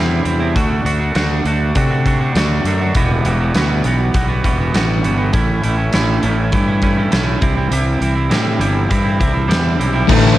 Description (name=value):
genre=quiet-loud alternative rock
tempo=100 BPM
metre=4/4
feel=straight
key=unclear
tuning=A4 = 444 Hz
part: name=twelve-string electric guitar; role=arpeggios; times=0.0-10.1 s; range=E2 to F#4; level=-19 LUFS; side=right 3 dB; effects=cassette tape
part: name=fuzz fingered electric bass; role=bass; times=0.0-10.4 s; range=E1 to C3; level=-17 LUFS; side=left 1 dB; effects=overdrive
part: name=big rock drum kit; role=drums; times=0.3-10.2 s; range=crash cymbal, hi-hat, kick drum, snare drum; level=-19 LUFS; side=equal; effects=cassette tape
part: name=mellow tonewheel organ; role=sustained chords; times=10.1-10.4 s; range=D4 to E5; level=-22 LUFS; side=left 3 dB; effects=slow rotary speaker, cassette tape
part: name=fuzz guitar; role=riff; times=10.1-10.4 s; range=A2 to A3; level=-15 LUFS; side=right 5 dB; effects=distortion, cassette tape
part: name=thick fuzz guitar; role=riff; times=10.1-10.4 s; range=A2 to D4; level=-13 LUFS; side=left 8 dB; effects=distortion, cassette tape
room=studio reverb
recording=home recording on cassette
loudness=-13 LUFS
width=side -14 dB against mid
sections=0.0-10.1 A section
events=none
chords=0.0 C; 0.6 D; 2.9 Emadd9; 5.3 A; 7.4 C